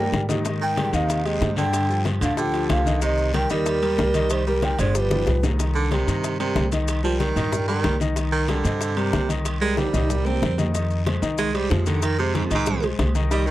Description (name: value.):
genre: Afro-Cuban jazz.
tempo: 187 BPM.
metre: 4/4.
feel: straight.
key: C minor.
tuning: A4 = 440 Hz.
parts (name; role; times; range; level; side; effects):
round clay ocarina; melody; 0.0-5.4 s; Bb4 to G5; -25 LUFS; right 1 dB; none.
clear baritone saxophone; second line; 0.0-13.5 s; F2 to C4; -26 LUFS; right 5 dB; none.
clear concert grand piano; accompaniment; 0.0-13.5 s; C3 to Eb5; -27 LUFS; left 4 dB; none.
upright bass; bass; 0.0-13.5 s; G1 to Ab2; -24 LUFS; equal; none.
bongos; percussion; 0.1-13.5 s; none; -29 LUFS; left 5 dB; none.
congas; percussion; 0.1-13.5 s; none; -31 LUFS; left 1 dB; none.
guiro; percussion; 0.1-13.5 s; none; -38 LUFS; left 6 dB; none.
maracas; percussion; 0.1-13.5 s; none; -37 LUFS; left 9 dB; none.
timbales; percussion; 0.3-13.5 s; none; -33 LUFS; right 3 dB; none.
room: light reverb.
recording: dry, close 1970s-style studio recording.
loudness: -20 LUFS.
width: side -15 dB against mid.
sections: 0.0-5.6 A section; 5.6-13.5 B section.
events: drum fill 0.0-0.5, 5.1-5.6, 9.8-10.7; baritone saxophone solo 5.6-13.5.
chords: 0.5 Abmaj7; 1.7 G5; 3.0 Cm9; 5.0 G7; 5.6 Cm7; 10.7 Fm7.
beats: 0.13 | 0.45 0.78 1.10 1.42 | 1.74 2.06 2.38 2.70 | 3.02 3.35 3.67 3.99 | 4.31 4.63 4.95 5.28 | 5.60 5.92 6.24 6.56 | 6.88 7.20 7.53 7.85 | 8.17 8.49 8.81 9.13 | 9.46 9.78 10.10 10.42 | 10.74 11.06 11.38 11.71 | 12.03 12.35 12.67 12.99 | 13.31.